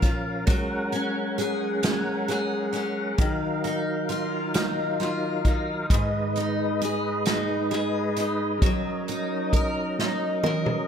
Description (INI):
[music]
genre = six-eight pop ballad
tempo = 44 BPM (dotted quarters)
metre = 6/8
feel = straight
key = F# major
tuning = A4 = 439 Hz
[part]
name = picked steel-string acoustic guitar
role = accompaniment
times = 0.0-10.9 s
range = G#2 to A#4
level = -27 LUFS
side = left 1 dB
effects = double-tracked left and right
[part]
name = tonewheel organ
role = sustained chords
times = 0.0-10.9 s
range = E#3 to F#5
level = -28 LUFS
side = equal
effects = chorus vibrato, slow rotary speaker
[part]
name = unplugged drum kit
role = drums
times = 0.0-10.9 s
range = hi-hat, kick drum, snare drum, toms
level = -25 LUFS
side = equal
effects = tape echo
[sound]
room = light reverb, small room ambience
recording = echo-heavy mix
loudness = -23 LUFS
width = side -8 dB against mid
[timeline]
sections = 0.0-10.9 A section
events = drum fill 10.0-10.9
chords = 0.5 F#add9; 3.2 D#madd9; 5.9 G#m; 8.6 F#6